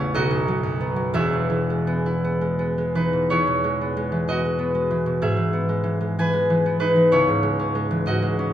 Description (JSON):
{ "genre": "classical, solo harp piece", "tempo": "54-65 BPM (dotted quarters)", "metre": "6/8", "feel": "rubato", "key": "E major", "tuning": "A4 = 445 Hz", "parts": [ { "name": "concert harp", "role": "solo", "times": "0.0-8.5 s", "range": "E1 to G#5", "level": "-19 LUFS", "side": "equal", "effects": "none" } ], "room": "wet recital hall reverb, RT60 1.8 s", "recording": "none", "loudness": "-19 LUFS", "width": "side -11 dB against mid", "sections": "0.0-3.3 A section; 3.3-8.5 B section", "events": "none", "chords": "0.2 B; 1.2 E; 5.2 E/G#; 7.1 C#m", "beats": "0.15 | 1.16 2.24 | 3.31 4.27 | 5.23 6.18 | 7.12 8.08" }